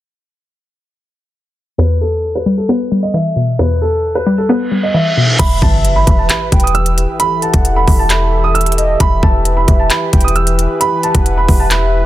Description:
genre	hip hop, trap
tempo	133 BPM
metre	4/4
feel	half-time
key	E minor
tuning	A4 = 440 Hz
part	dark concert grand piano	melody	1.8-12.0 s	A4 to E6	-17 LUFS	right 2 dB	tape echo
part	hollow square pluck	accompaniment	1.8-5.4 s	E2 to B3	-14 LUFS	left 1 dB	chorus
part	reverse cymbal and impact	sound effects	4.7-7.2 s	none	-21 LUFS	right 1 dB	none
part	warm velvety synth lead	second line	5.4-12.1 s	D#5 to G5	-22 LUFS	right 2 dB	chorus, tape echo
part	sweeping resonant pad	sustained chords	5.4-12.1 s	E3 to B4	-20 LUFS	left 1 dB	chorus
part	warm 808-style bass	bass	5.4-12.1 s	E1 to G1	-14 LUFS	equal	none
part	trap drum kit	drums	5.4-11.8 s	crash cymbal, handclaps, hi-hat, kick drum	-14 LUFS	equal	none
room	digital ambience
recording	dense, heavily limited modern master, low-pass filter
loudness	-11 LUFS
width	side -14 dB against mid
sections	1.8-5.4 A section; 5.4-12.1 B section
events	filter sweep 1.8-5.4; reverse cymbal 4.7-5.4; impact 5.4-7.2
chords	1.8 Em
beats	| 1.78 2.24 2.69 3.14 | 3.59 4.04 4.49 4.94 | 5.39 5.84 6.30 6.75 | 7.20 7.65 8.10 8.55 | 9.00 9.45 9.90 10.36 | 10.81 11.26 11.71

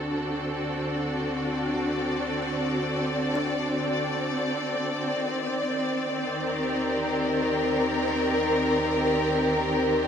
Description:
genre	ambient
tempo	65 BPM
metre	4/4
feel	straight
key	unclear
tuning	A4 = 440 Hz
part	rich studio string section	sustained chords	0.0-10.1 s	D3 to D5	-24 LUFS	equal	none
part	buzzing kalimba	arpeggios	0.0-5.6 s	C4 to D4	-42 LUFS	right 2 dB	none
part	deep rumbling drone	bass	0.0-10.1 s	D2 to Eb2	-44 LUFS	equal	built-in reverb
room	wet huge ambient reverb, RT60 7.5 s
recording	none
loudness	-24 LUFS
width	side -8 dB against mid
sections	0.0-10.1 A section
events	fade-in on synth drone 0.0-10.1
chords	0.0 D7; 5.2 Cm9/Eb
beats	0.59 | 1.51 2.44 3.36 4.28 | 5.21 6.13 7.04 7.96 | 8.89 9.82

